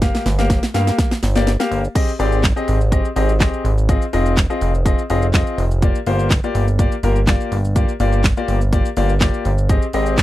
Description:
dance-pop; 124 BPM; 4/4; straight; A4 = 440 Hz
clear baby grand piano; accompaniment; 0.0-10.1 s; Bb3 to F5; -21 LUFS; left 3 dB; sidechain pumping, low-pass filter
chorused synth bass; bass; 0.0-10.2 s; F1 to G2; -17 LUFS; equal; sidechain pumping
pop drum kit; drums; 0.0-10.2 s; crash cymbal, handclaps, hi-hat, kick drum, shaker, snare drum; -18 LUFS; equal
little or no reverb; dry, close 1970s-style studio recording; -15 LUFS; side -15 dB against mid
0.0-2.0 A section; 2.0-10.2 B section
build-up 0.0-2.0; drum fill 0.0-2.0; drop 2.0-10.2
0.0 Gm7; 2.0 Abmaj7; 3.9 Fm7; 5.8 Gm7; 9.7 Abmaj7
| 0.02 0.50 0.98 1.47 | 1.95 2.44 2.92 3.40 | 3.89 4.37 4.86 5.34 | 5.82 6.31 6.79 7.28 | 7.76 8.24 8.73 9.21 | 9.70 10.18

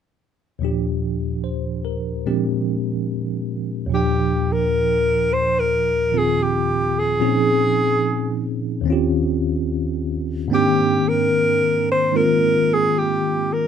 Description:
jazz; 73 BPM; 4/4; swing 68% on 8ths; Eb major; A4 = 441 Hz
bell-like tine electric piano; accompaniment; 0.6-13.7 s; Eb2 to G5; -20 LUFS; equal; medium stereo tremolo
breathy alto saxophone; melody; 3.9-13.7 s; G4 to C5; -19 LUFS; equal
moderate studio reverb, RT60 0.8 s; minimal, uncompressed stereo recording; -18 LUFS; side -8 dB against mid
0.6-3.9 A section; 3.9-13.7 B section
0.6 Ebmaj7; 2.2 Bb13; 3.9 Ebmaj9; 7.2 Bbm11; 8.8 Eb13; 10.5 Abmaj9#11
| 0.60 1.42 2.25 3.07 | 3.89 4.72 5.54 6.36 | 7.18 8.01 8.83 9.65 | 10.47 11.29 12.12 12.94

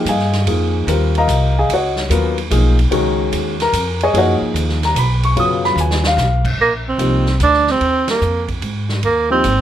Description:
modal jazz; 147 BPM; 3/4; swing 67% on 8ths; A4 = 440 Hz
warm concert grand piano; accompaniment; 0.0-7.2, 9.3-9.4 s; Db3 to Eb6; -17 LUFS; left 2 dB
upright bass; bass; 0.0-9.6 s; Ab1 to Ab2; -18 LUFS; equal
swinging big-band drum kit; drums; 0.1-9.6 s; crash cymbal, hi-hat, kick drum, ride cymbal, snare drum; -24 LUFS; right 3 dB
warm tenor saxophone; melody; 6.6-9.6 s; Bb3 to D4; -15 LUFS; right 3 dB
light reverb; -14 LUFS; side -11 dB against mid
0.0-6.6 A section; 6.6-9.6 B section
drum fill 5.8-6.2; band accent 8.0
0.0 Bb9sus4; 1.7 Db9sus4; 6.6 Bb9sus4
0.07 | 0.47 0.88 1.29 | 1.70 2.10 2.51 | 2.92 3.33 3.73 | 4.14 4.55 4.95 | 5.36 5.77 6.18 | 6.58 6.99 7.40 | 7.81 8.21 8.62 | 9.03 9.44

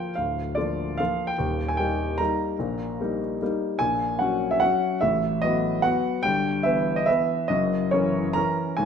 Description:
classical, piano waltz; 135-160 BPM; 3/4; rubato; Eb major; A4 = 441 Hz
warm grand piano; solo; 0.0-8.9 s; D1 to Bb5; -22 LUFS; equal
moderate recital hall reverb, RT60 1.5 s; minimal, uncompressed stereo recording; -22 LUFS; side -7 dB against mid
0.0-8.9 A section
0.0 Bb/D; 1.4 Eb; 3.8 F#/A#; 5.0 B7/A; 6.2 Em/G; 7.5 F#7
| 0.17 0.58 1.00 | 1.39 1.79 2.19 | 2.60 3.00 3.41 | 3.80 4.19 4.61 | 5.01 5.42 5.83 | 6.24 6.65 7.08 | 7.50 7.92 8.36 | 8.79

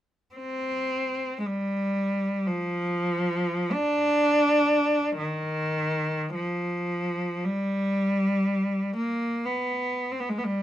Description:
classical, free, expressive piece for unaccompanied cello; 34-61 BPM; 4/4; rubato; A4 = 440 Hz
clear cello; solo; 0.3-10.6 s; Eb3 to D4; -24 LUFS; equal
light reverb; close, detailed microphones; -24 LUFS; side -12 dB against mid
0.3-5.2 A section; 5.2-10.6 B section
| 0.34 1.46 2.49 3.73 | 5.18 6.34 7.44 8.46 | 9.45 10.47

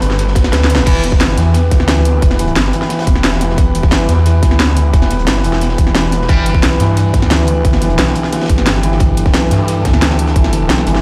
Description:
dark technical drum and bass; 177 BPM; 4/4; straight; E minor; A4 = 442 Hz
metallic inharmonic drone; sustained chords; 0.0-11.0 s; D3 to B4; -24 LUFS; equal; chorus, built-in reverb, sidechain pumping
snarling distorted saw bass; bass; 0.0-11.0 s; E1 to G2; -16 LUFS; equal; distortion, overdrive, sidechain pumping
crunchy breakbeat drum kit; drums; 0.0-11.0 s; hi-hat, snare drum; -29 LUFS; equal; high-pass filter on hats, high-pass filter on snare, high-pass filter on room
drum and bass drum kit; drums; 0.0-11.0 s; crash cymbal, hi-hat, snare drum; -19 LUFS; equal; overdrive
electronic kick drum; drums; 0.4-10.4 s; -14 LUFS; equal
felt-muted upright piano; arpeggios; 0.9-11.0 s; E3 to B3; -22 LUFS; equal; sidechain pumping, dub echo
heavy high-gain guitar; stabs; 0.9-1.0, 6.3-6.4 s; E3 to G4; -25 LUFS; equal; distortion, dub echo
light reverb, small room ambience; played on a big sound system in a bare room, large studio reverb; -13 LUFS; mono
0.0-11.0 A section
drum fill 0.5-0.9
0.0 G; 0.9 Em; 6.3 G
0.19 0.53 | 0.87 1.21 1.54 1.88 | 2.22 2.56 2.90 3.24 | 3.58 3.92 4.26 4.60 | 4.93 5.27 5.61 5.95 | 6.29 6.63 6.97 7.31 | 7.65 7.99 8.32 8.66 | 9.00 9.34 9.68 10.02 | 10.36 10.70

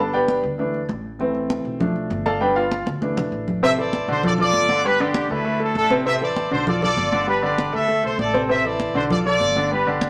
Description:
latin, salsa; 197 BPM; 4/4; straight; A minor; A4 = 440 Hz
clear baby grand piano; accompaniment; 0.0-10.1 s; C3 to A5; -24 LUFS; equal
upright bass; bass; 0.0-10.1 s; G1 to D2; -34 LUFS; equal
congas; percussion; 0.1-10.1 s; -29 LUFS; equal
bright trumpet section; melody; 3.6-10.1 s; B3 to E5; -23 LUFS; equal
wet studio reverb, RT60 0.8 s; -21 LUFS; mono
0.0-3.6 A section; 3.6-10.1 B section
grand piano solo 0.0-3.6; drum fill 2.9-3.6
0.0 G; 0.6 Dsus2; 1.2 Am; 1.8 Bm7b5; 2.4 G; 3.0 Dsus2; 3.6 Am; 4.2 Bm7b5; 4.8 G; 5.4 Dsus2; 6.1 Am; 6.7 Bm7b5; 7.3 G; 7.9 D5; 8.5 Am; 9.1 Bm7b5
0.28 0.59 0.89 | 1.20 1.50 1.80 2.11 | 2.41 2.71 3.02 3.32 | 3.62 3.93 4.23 4.54 | 4.84 5.14 5.45 5.75 | 6.06 6.36 6.67 6.97 | 7.27 7.58 7.88 8.19 | 8.49 8.80 9.10 9.41 | 9.71 10.02

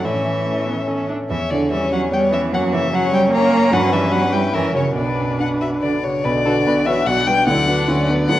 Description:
quick classical-period movement for piano quintet; 137-152 BPM; 3/4; rubato; B minor; A4 = 440 Hz
rich violin; melody; 0.0-8.4 s; A#4 to G5; -22 LUFS; left 4 dB
rich violin; second line; 0.0-8.4 s; A4 to A#5; -25 LUFS; left 3 dB
warm cello; second line; 0.0-8.4 s; B2 to A#3; -22 LUFS; right 3 dB
clear concert grand piano; accompaniment; 0.0-8.4 s; B1 to C#5; -21 LUFS; equal
warm viola; accompaniment; 0.0-8.4 s; A#3 to F#4; -25 LUFS; right 1 dB
wet recital hall reverb, RT60 1.3 s; worn, warbling old tape, cassette tape, warbly pitch drift; -16 LUFS; side -13 dB against mid
0.0-6.3 A section; 6.3-8.4 B section
0.0 A; 1.3 C#dim/E; 2.5 F#; 3.7 Em/G; 4.5 F#7; 5.0 Bm; 7.5 Bm/D
| 0.04 0.46 0.89 | 1.31 1.72 2.13 | 2.54 2.94 3.34 | 3.73 4.13 4.54 | 4.96 5.40 5.83 | 6.26 6.67 7.07 | 7.48 7.88 8.29

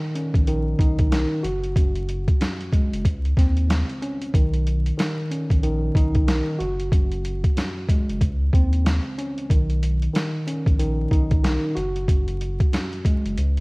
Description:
hip hop, boom-bap hip-hop; 93 BPM; 4/4; swing 60% on 16ths; B major; A4 = 440 Hz
mellow tine electric piano; accompaniment; 0.0-13.6 s; C#2 to F#4; -26 LUFS; equal; medium stereo tremolo, cassette tape, high-pass filter, low-pass filter
boom bap sampler-style drum kit; drums; 0.2-13.6 s; hi-hat, kick drum, snare drum; -21 LUFS; equal
warm sub bass; bass; 0.3-13.6 s; F#1 to D#2; -23 LUFS; equal; tube saturation
little or no reverb; home recording on cassette, vinyl crackle; -19 LUFS; side -29 dB against mid
0.0-13.6 A section
kick muted 13.4
0.0 Bmaj9; 1.4 F#sus2; 3.0 C#sus2; 4.3 Bmaj9; 6.6 F#sus2; 8.2 C#sus2; 9.5 Bmaj9; 11.8 F#sus2
0.47 1.11 | 1.76 2.40 3.05 3.69 | 4.34 4.98 5.63 6.28 | 6.92 7.57 8.21 8.86 | 9.50 10.15 10.79 11.44 | 12.08 12.73 13.37

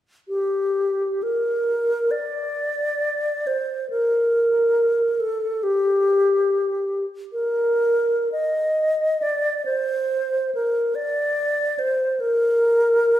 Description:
classical, free, expressive piece for unaccompanied alto flute; 57-74 BPM; 4/4; rubato; Bb major; A4 = 440 Hz
alto flute; solo; 0.3-13.2 s; G4 to Eb5; -19 LUFS; equal
wet recital hall reverb, RT60 1.5 s; recorded in a church or concert hall; -19 LUFS; side -12 dB against mid
0.3-13.2 A section
| 0.29 1.22 2.11 3.01 | 3.92 4.79 5.63 6.48 | 7.33 8.33 9.23 10.10 | 10.95 11.78 12.60

